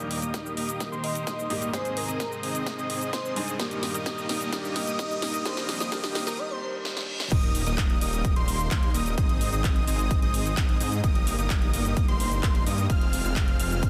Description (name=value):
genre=EDM, festival progressive house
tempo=129 BPM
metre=4/4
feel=straight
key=Eb major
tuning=A4 = 439 Hz
part: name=bright concert grand piano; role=accompaniment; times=0.0-7.3 s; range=G2 to Ab4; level=-37 LUFS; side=equal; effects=sidechain pumping, dub echo
part: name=lush unison pad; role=sustained chords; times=0.0-13.9 s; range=Eb2 to Eb5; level=-41 LUFS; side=equal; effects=chorus, sidechain pumping
part: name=unison lead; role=arpeggios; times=0.0-13.9 s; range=C6 to F6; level=-37 LUFS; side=equal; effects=sidechain pumping, dub echo
part: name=dense compressed supersaw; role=riff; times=0.0-13.9 s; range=Bb3 to F5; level=-36 LUFS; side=equal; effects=sidechain pumping, low-pass filter, dub echo
part: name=big-room dance drum kit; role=drums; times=0.0-13.9 s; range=cabasa, crash cymbal, handclaps, hi-hat, snare drum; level=-36 LUFS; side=equal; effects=high-pass filter on hats, small room ambience, high-pass filter on snare, high-pass filter on perc, high-pass filter on cymbals
part: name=riser, reverse cymbal and sub drop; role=sound effects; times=2.3-9.2 s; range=none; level=-42 LUFS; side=equal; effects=none
part: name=electronic kick drum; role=drums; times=0.3-13.9 s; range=none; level=-28 LUFS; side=equal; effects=overdrive, high-pass filter on kick, small room ambience
part: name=airy dreamy lead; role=melody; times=1.0-6.7 s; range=Bb4 to Eb5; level=-38 LUFS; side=equal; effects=chorus, dub echo
part: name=detuned saw bass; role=bass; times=7.3-13.9 s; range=Eb1 to Ab2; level=-32 LUFS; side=equal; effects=sidechain pumping
room=light reverb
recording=dense, heavily limited modern master, high-pass filter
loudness=-27 LUFS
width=mono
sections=0.0-7.3 A section; 7.3-13.9 B section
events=build-up 0.0-7.3; drum fill 0.0-6.4, 6.9-7.3; filter sweep on supersaw synth 0.0-7.3; filter sweep 0.0-7.3; reverse cymbal 6.4-7.3; drop 7.3-13.9; impact 7.3-9.2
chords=0.0 Eb; 1.7 Ab; 3.6 Eb/G; 5.5 F5; 7.3 Eb; 9.2 Ab; 11.0 Eb/G; 12.9 Fm